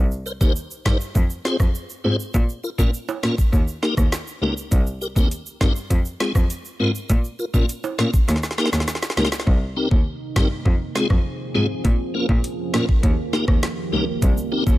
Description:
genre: dancehall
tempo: 101 BPM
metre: 4/4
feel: straight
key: F minor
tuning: A4 = 440 Hz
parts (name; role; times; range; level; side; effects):
- clear cello; bass; 0.0-14.7 s; C2 to Bb2; -24 LUFS; equal; none
- egg shaker and timbales; percussion; 0.1-9.5, 14.2-14.8 s; none; -33 LUFS; right 6 dB; none
- tonewheel organ; accompaniment; 0.3-14.6 s; Ab3 to C5; -25 LUFS; left 2 dB; overdrive, chorus vibrato, fast rotary speaker
- island pop drum kit; drums; 0.4-14.8 s; hi-hat, kick drum, rim click, snare drum; -19 LUFS; equal; none
- deep dark ambient pad; sustained chords; 9.9-14.8 s; C3 to Ab4; -28 LUFS; right 2 dB; chorus, built-in reverb, sidechain pumping
room: digital ambience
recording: none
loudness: -19 LUFS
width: side -16 dB against mid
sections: 0.0-9.5 A section; 9.5-14.8 B section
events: drum fill 8.3-9.5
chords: 0.0 Cm7; 1.2 Fm; 2.3 Bbm; 3.5 Eb; 4.7 Cm7; 5.9 Fm; 7.1 Bbm; 8.3 Eb; 9.5 Cm7; 10.7 Fm; 11.8 Bbm; 13.0 Eb; 14.2 Cm7

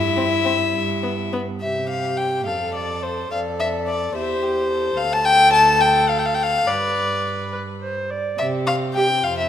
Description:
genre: quick classical-period movement for string quartet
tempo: 70 BPM (dotted quarters)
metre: 6/8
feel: rubato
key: C major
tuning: A4 = 439 Hz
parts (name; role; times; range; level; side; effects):
- warm violin; melody; 0.0-9.5 s; F4 to E5; -28 LUFS; left 9 dB; none
- warm viola; accompaniment; 0.0-9.1 s; E4 to D5; -25 LUFS; right 1 dB; none
- rich cello; bass; 0.0-9.5 s; D2 to C3; -28 LUFS; right 4 dB; none
- warm violin; second line; 0.2-9.5 s; B3 to A5; -19 LUFS; left 2 dB; none
room: moderate recital hall reverb, RT60 1.7 s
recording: none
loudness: -18 LUFS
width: side -10 dB against mid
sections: 0.0-1.6 A section; 1.6-9.5 B section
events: none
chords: 0.0 C/G; 1.6 C5; 2.5 F; 4.2 C/E; 5.0 D5; 6.7 G; 8.4 C5

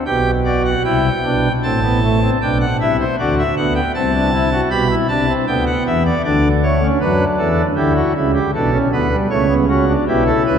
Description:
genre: classical, baroque-style 3-part fugue for pipe organ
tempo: 78 BPM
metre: 4/4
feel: straight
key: G major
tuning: A4 = 440 Hz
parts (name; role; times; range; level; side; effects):
- pipe organ, cornet; solo; 0.0-10.6 s; A1 to B5; -14 LUFS; equal; none
room: wet cathedral reverb, RT60 4.9 s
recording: none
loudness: -14 LUFS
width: side -7 dB against mid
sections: 0.1-10.6 A section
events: none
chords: 0.1 G/B; 1.6 Am7; 3.2 D7; 4.7 G/B; 6.2 D; 7.8 Em7

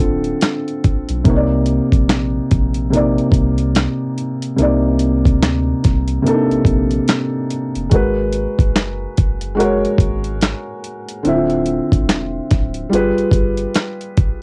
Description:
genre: lo-fi hip hop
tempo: 72 BPM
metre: 4/4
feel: swing 60% on 16ths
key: unclear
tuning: A4 = 441 Hz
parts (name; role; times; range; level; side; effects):
- felt-muted upright piano; accompaniment; 0.0-14.4 s; C3 to E5; -20 LUFS; equal; low-pass filter, cassette tape
- soft dub sub bass; bass; 0.0-13.7 s; D1 to D2; -24 LUFS; equal; none
- dusty soul sampler-style drum kit; drums; 0.0-14.4 s; handclaps, hi-hat, kick drum, snare drum; -18 LUFS; equal; overdrive, cassette tape
room: light reverb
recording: home recording on cassette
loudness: -17 LUFS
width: mono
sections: 0.0-14.4 A section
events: none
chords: 0.0 Dm9; 1.2 Cm9; 7.9 Abm9; 11.2 Dm9; 12.9 G7b9

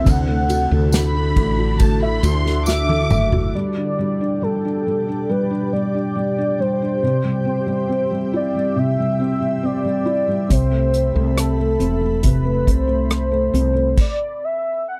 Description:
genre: pop ballad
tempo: 69 BPM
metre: 4/4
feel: straight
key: G major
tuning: A4 = 441 Hz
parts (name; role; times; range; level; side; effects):
- warm velvety synth lead; melody; 0.0-15.0 s; A4 to F#5; -25 LUFS; equal; chorus, slapback echo
- felt-muted upright piano; accompaniment; 0.0-14.0 s; C3 to E5; -24 LUFS; equal; none
- ethereal airy pad; sustained chords; 0.0-13.9 s; B2 to B5; -30 LUFS; equal; ensemble chorus, built-in reverb
- woody fretless electric bass; bass; 0.0-3.5, 10.5-13.9 s; E1 to D2; -22 LUFS; equal; none
- unplugged drum kit; drums; 0.1-3.5, 10.5-14.2 s; crash cymbal, hi-hat, kick drum, ride cymbal, rim click, snare drum, toms; -21 LUFS; equal; none
- tambourine; percussion; 0.1-3.3 s; none; -35 LUFS; equal; none
- warm studio violin section; second line; 0.9-3.5 s; A5 to D6; -29 LUFS; equal; none
room: little or no reverb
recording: dry, close 1970s-style studio recording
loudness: -19 LUFS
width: mono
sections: 0.0-3.5 A section; 3.5-15.0 B section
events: drum fill 2.7-3.5; stop 14.0-15.0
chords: 0.1 Dadd9; 3.5 G; 7.0 C; 10.5 Amadd9; 14.0 N.C.

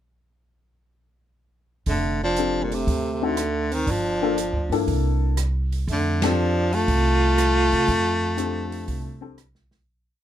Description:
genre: jazz, small-group swing and bop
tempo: 120 BPM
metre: 4/4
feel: swing 69% on 8ths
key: F major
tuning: A4 = 442 Hz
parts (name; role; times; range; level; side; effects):
- bright baritone saxophone; melody; 1.9-9.4 s; Bb2 to A3; -24 LUFS; left 2 dB; none
- clear alto saxophone; second line; 1.9-9.4 s; G3 to F4; -27 LUFS; right 5 dB; none
- upright bass; bass; 1.9-9.8 s; F1 to C3; -25 LUFS; right 1 dB; none
- open jazz drum kit; drums; 1.9-9.8 s; hi-hat, kick drum, ride cymbal, rim click, snare drum; -30 LUFS; right 1 dB; none
- warm baby grand piano; accompaniment; 2.4-9.4 s; Bb3 to A4; -26 LUFS; left 7 dB; none
room: light reverb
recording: close, detailed microphones, faint mains hum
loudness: -20 LUFS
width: side -11 dB against mid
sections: 1.9-9.9 A section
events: band accent 6.1; fade-out 7.9-9.9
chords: 1.9 F69; 2.9 D7b9; 3.9 Gm7; 4.9 C13; 5.9 F69

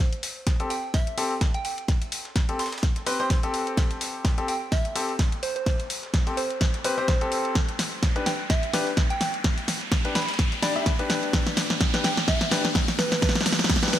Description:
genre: bass house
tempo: 127 BPM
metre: 4/4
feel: swing 56% on 16ths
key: A minor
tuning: A4 = 440 Hz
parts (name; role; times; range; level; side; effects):
- riser; sound effects; 1.8-14.0 s; none; -34 LUFS; right 1 dB; none
- house drum kit; drums; 0.1-14.0 s; hi-hat, snare drum; -27 LUFS; equal; small room reverb
- breakbeat sampler-style drum kit; drums; 0.2-14.0 s; hi-hat, ride cymbal, snare drum; -40 LUFS; right 2 dB; none
- electronic kick drum; drums; 0.5-13.8 s; none; -24 LUFS; equal; small room reverb
- clear grand piano; stabs; 0.6-14.0 s; C4 to E5; -29 LUFS; left 3 dB; sidechain pumping, low-pass filter, tape echo
- soft synth bell; melody; 0.7-14.0 s; B4 to C6; -32 LUFS; right 2 dB; chorus, tape echo
room: light reverb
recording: none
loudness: -22 LUFS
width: side -11 dB against mid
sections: 0.0-14.0 A section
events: build-up 0.0-14.0; drum fill 0.0-14.0; riser 1.8-14.0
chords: 0.0 Am7; 7.6 G

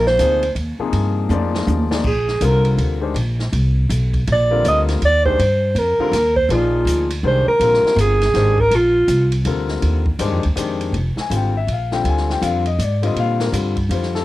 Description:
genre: modal jazz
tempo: 162 BPM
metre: 3/4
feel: swing 64% on 8ths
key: Bb mixolydian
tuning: A4 = 440 Hz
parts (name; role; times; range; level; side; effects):
- mellow alto saxophone; melody; 0.0-9.3 s; F4 to Eb5; -16 LUFS; right 1 dB; cassette tape
- upright bass; bass; 0.0-14.2 s; F1 to Bb2; -19 LUFS; equal; none
- open jazz drum kit; drums; 0.1-14.2 s; crash cymbal, hi-hat, kick drum, ride cymbal, snare drum, toms; -28 LUFS; equal; cassette tape
- warm grand piano; accompaniment; 0.2-14.2 s; C3 to Ab5; -22 LUFS; left 6 dB; none
room: moderate booth ambience, RT60 0.2 s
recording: home recording on cassette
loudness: -15 LUFS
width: side -16 dB against mid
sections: 0.0-10.9 A section; 10.9-14.2 A section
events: alto saxophone solo 0.0-10.9; drum fill 1.3-2.0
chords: 0.0 Ebadd9/Bb; 2.0 Bb; 4.3 Ebadd9/Bb; 6.5 Bb7; 8.7 Ebadd9/Bb; 10.9 Bb7; 13.2 Ebadd9 (rootless)

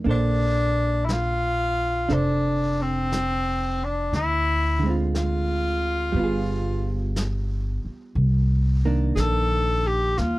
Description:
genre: jazz ballad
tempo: 59 BPM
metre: 4/4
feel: swing 68% on 8ths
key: Bb major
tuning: A4 = 440 Hz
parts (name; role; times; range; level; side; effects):
- hollow-body jazz guitar; accompaniment; 0.0-10.4 s; D3 to C5; -28 LUFS; right 4 dB; none
- upright bass; bass; 0.0-10.4 s; F1 to Eb2; -24 LUFS; equal; none
- clear tenor saxophone; melody; 0.1-10.4 s; C4 to A4; -25 LUFS; left 2 dB; none
- vintage brush drum kit; drums; 0.1-10.4 s; brushed snare drum, hi-hat, snare drum; -36 LUFS; equal; none
room: little or no reverb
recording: dry, close 1970s-style studio recording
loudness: -21 LUFS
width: side -18 dB against mid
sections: 0.1-10.4 A section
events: none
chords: 0.1 Bbmaj9; 4.1 Dm7b5; 6.2 G7b9; 8.2 Cm9

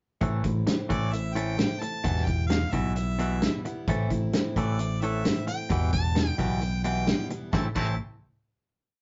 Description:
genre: folk rock and heartland rock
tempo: 131 BPM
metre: 4/4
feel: straight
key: A minor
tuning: A4 = 440 Hz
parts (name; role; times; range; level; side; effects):
- picked plugged-in steel-string acoustic guitar; accompaniment; 0.2-8.0 s; E2 to E4; -39 LUFS; equal; none
- twangy electric guitar; riff; 0.2-7.9 s; E2 to E4; -35 LUFS; equal; none
- picked electric bass; bass; 0.2-8.0 s; E1 to B1; -31 LUFS; equal; none
- natural country drum kit; drums; 0.2-7.9 s; crash cymbal, hi-hat, kick drum, snare drum; -31 LUFS; equal; none
- clear harmonica; melody; 0.9-8.0 s; D5 to A5; -37 LUFS; equal; none
room: moderate studio reverb, RT60 0.5 s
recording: rough rehearsal-room recording, nothing above 7.6 kHz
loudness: -27 LUFS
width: mono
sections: 0.2-7.5 verse; 7.5-9.0 final chord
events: none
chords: 0.2 Am; 2.0 Em; 3.9 Am; 5.7 Em; 7.5 Am

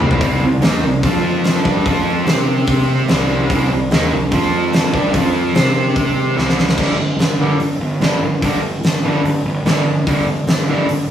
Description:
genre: hard rock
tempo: 146 BPM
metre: 4/4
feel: straight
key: unclear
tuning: A4 = 440 Hz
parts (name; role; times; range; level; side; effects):
- crunchy overdriven guitar; riff; 0.0-10.9 s; G2 to C5; -21 LUFS; left 4 dB; none
- overdriven electric guitar; riff; 0.0-10.9 s; G2 to C5; -20 LUFS; right 3 dB; none
- fuzz fingered electric bass; bass; 0.0-11.1 s; G1 to C3; -20 LUFS; equal; overdrive
- huge arena drum kit; drums; 0.0-11.0 s; crash cymbal, hi-hat, kick drum, snare drum, toms; -17 LUFS; equal; none
room: moderate small room reverb, RT60 0.5 s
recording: rough rehearsal-room recording, warm saturation, studio reverb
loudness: -13 LUFS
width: side -10 dB against mid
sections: 0.0-6.8 A section; 6.8-11.1 B section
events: drum fill 0.0, 6.4-6.8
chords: 0.2 C5; 1.0 F5; 1.6 G5; 1.9 F5; 2.3 C5; 4.3 F5; 4.9 G5; 5.1 F5; 5.5 C5; 6.8 G5

